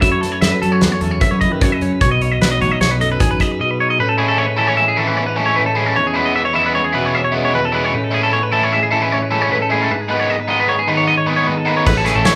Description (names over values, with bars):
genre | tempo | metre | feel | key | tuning
math rock and midwest emo | 152 BPM | 5/4 | straight | unclear | A4 = 441 Hz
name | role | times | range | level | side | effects
twelve-string electric guitar | accompaniment | 0.0-12.4 s | E2 to A4 | -23 LUFS | equal | none
clean electric guitar | arpeggios | 0.0-12.3 s | G#4 to E5 | -20 LUFS | equal | none
fingered electric bass | bass | 0.0-3.4, 11.9-12.2 s | A1 to F#3 | -23 LUFS | equal | none
loose indie drum kit | drums | 0.0-3.5, 11.9-12.3 s | crash cymbal, hi-hat, kick drum, snare drum | -20 LUFS | equal | none
biting overdriven guitar | riff | 4.2-12.3 s | D#3 to E4 | -22 LUFS | equal | none
room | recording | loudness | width
moderate large studio reverb, RT60 0.8 s | band playing live in one room | -16 LUFS | mono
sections
0.0-4.0 A section; 4.0-12.4 B section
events
none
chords
0.0 F#m7; 2.0 B13; 4.0 Amaj7; 6.0 E6; 7.9 Amaj7; 9.9 G#m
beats
| 0.02 0.42 0.82 1.21 1.61 | 2.01 2.40 2.80 3.19 3.59 | 3.99 4.38 4.78 5.17 5.57 | 5.96 6.35 6.75 7.14 7.54 | 7.93 8.32 8.72 9.11 9.51 | 9.90 10.29 10.69 11.08 11.47 | 11.86 12.26